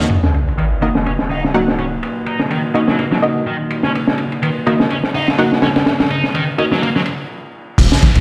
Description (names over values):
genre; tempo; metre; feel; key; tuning
breakbeat, breaks; 125 BPM; 4/4; swing 56% on 16ths; Eb minor pentatonic; A4 = 440 Hz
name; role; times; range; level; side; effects
dark analog pad; sustained chords; 0.0-8.2 s; Bb3 to Eb5; -28 LUFS; equal; chorus, vintage 12-bit sampler grit, sidechain pumping
distorted electric guitar; riff; 0.0-7.0 s; Eb3 to Eb4; -24 LUFS; equal; distortion, low-pass filter, digital delay
filtered dub chord stab; stabs; 0.0-6.7 s; Bb3 to Gb5; -20 LUFS; equal; chorus, digital delay
crunchy breakbeat drum kit; drums; 0.0-8.2 s; crash cymbal, hi-hat, kick drum, ride cymbal, snare drum; -19 LUFS; equal; low-pass filter on kick, low-pass filter on cymbals, low-pass filter on hats, low-pass filter on snare, low-pass filter on room
sub drop and downlifter; sound effects; 0.1-2.0, 7.8-8.2 s; none; -22 LUFS; equal; none
fat analog bass; bass; 7.8-8.2 s; Eb1; -16 LUFS; equal; none
congas; percussion; 8.0-8.1 s; none; -24 LUFS; equal; none
room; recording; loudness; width
moderate plate reverb, RT60 0.9 s; played on a big sound system in a bare room, large studio reverb; -16 LUFS; mono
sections
0.1-7.8 A section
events
impact 0.1-2.0; filter sweep on analog synth pad 0.1-7.8; stop 7.3-7.8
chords
0.1 Ebm